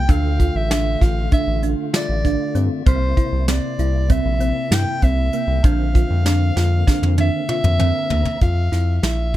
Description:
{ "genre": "progressive instrumental, band music in an uneven meter", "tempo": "195 BPM (eighths)", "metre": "9/8", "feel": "straight", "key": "unclear", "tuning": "A4 = 440 Hz", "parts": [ { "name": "warm soprano saxophone", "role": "melody", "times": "0.0-9.4 s", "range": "C5 to G5", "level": "-25 LUFS", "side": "equal", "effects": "ping-pong delay" }, { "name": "percussive tonewheel organ", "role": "accompaniment", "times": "0.0-8.4 s", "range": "C3 to Bb5", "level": "-28 LUFS", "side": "left 4 dB", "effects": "chorus vibrato, fast rotary speaker" }, { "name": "thumb-piano-like synth pluck", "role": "arpeggios", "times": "0.0-9.4 s", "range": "Bb3 to F4", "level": "-25 LUFS", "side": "right 3 dB", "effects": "chorus" }, { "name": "round analog bass", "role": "bass", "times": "0.0-9.4 s", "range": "A1 to G2", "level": "-19 LUFS", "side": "equal", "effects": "none" }, { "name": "soft brush drum kit", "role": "drums", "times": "0.1-9.4 s", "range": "hi-hat, kick drum, snare drum, toms", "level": "-18 LUFS", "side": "equal", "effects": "none" } ], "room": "little or no reverb", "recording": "none", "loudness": "-16 LUFS", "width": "side -14 dB against mid", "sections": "0.0-8.4 A section", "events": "drum fill 6.6-8.4; tonewheel organ fill 7.5-8.4", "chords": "0.1 Dm; 2.9 C7; 5.6 Bbadd9; 8.4 Bb5" }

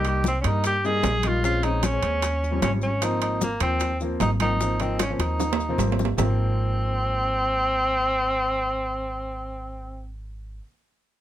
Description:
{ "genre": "Afro-Cuban jazz", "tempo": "152 BPM", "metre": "4/4", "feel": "straight", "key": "Ab major", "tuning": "A4 = 440 Hz", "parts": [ { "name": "clear tenor saxophone", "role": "melody", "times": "0.0-10.1 s", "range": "Bb3 to Ab4", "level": "-25 LUFS", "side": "equal", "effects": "none" }, { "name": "warm baby grand piano", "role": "accompaniment", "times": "0.0-10.6 s", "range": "F3 to Eb4", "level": "-30 LUFS", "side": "left 2 dB", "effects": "none" }, { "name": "upright bass", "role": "bass", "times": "0.0-10.6 s", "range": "Ab1 to G2", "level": "-27 LUFS", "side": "equal", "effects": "none" }, { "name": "congas", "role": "percussion", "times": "0.0-6.3 s", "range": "none", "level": "-31 LUFS", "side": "left 3 dB", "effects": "none" }, { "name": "timbales", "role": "percussion", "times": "0.0-6.3 s", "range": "none", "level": "-29 LUFS", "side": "right 10 dB", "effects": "none" }, { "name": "maracas", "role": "percussion", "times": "0.1-6.3 s", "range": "none", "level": "-39 LUFS", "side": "left 5 dB", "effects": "none" }, { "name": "bongos", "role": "percussion", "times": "0.2-6.3 s", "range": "none", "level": "-32 LUFS", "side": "left 6 dB", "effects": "none" } ], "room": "light reverb", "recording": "none", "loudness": "-21 LUFS", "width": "side -12 dB against mid", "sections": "0.0-6.2 A section; 6.2-9.3 B section", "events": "drum fill 5.0-6.2", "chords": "0.0 Cm7; 1.4 Bbm7; 2.2 Eb7; 3.0 Ab6" }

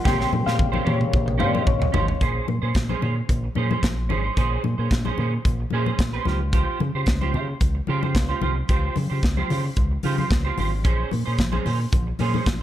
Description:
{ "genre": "disco", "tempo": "111 BPM", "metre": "4/4", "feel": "straight", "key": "Bb dorian", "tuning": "A4 = 440 Hz", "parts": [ { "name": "clean electric guitar", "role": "accompaniment", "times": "0.0-12.5 s", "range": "Db4 to C5", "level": "-28 LUFS", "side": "right 5 dB", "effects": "ensemble chorus" }, { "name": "reed electric piano", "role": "accompaniment", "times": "0.0-2.2 s", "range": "Db3 to G5", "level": "-26 LUFS", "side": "left 7 dB", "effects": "fast tremolo" }, { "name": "mellow French horn section", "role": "sustained chords", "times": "0.0-2.2 s", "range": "Db3 to G4", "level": "-33 LUFS", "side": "right 1 dB", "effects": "none" }, { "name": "fingered electric bass with an envelope filter", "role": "bass", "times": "0.1-12.6 s", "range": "Ab1 to Db3", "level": "-25 LUFS", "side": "equal", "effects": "none" }, { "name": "modern studio drum kit", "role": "drums", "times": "0.1-12.6 s", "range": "hi-hat, kick drum, snare drum, toms", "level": "-23 LUFS", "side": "equal", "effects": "none" }, { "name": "congas", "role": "percussion", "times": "0.1-12.5 s", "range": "none", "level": "-31 LUFS", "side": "left 4 dB", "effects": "none" } ], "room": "light reverb", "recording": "dark, warm production", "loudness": "-20 LUFS", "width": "side -12 dB against mid", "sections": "0.0-2.2 A section; 2.2-12.6 B section", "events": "reed electric piano solo 0.0-2.2; drum fill 0.1-2.2", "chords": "0.1 Bbm69; 2.2 Bbm9; 6.3 Dbmaj7#11; 10.8 Bbm9" }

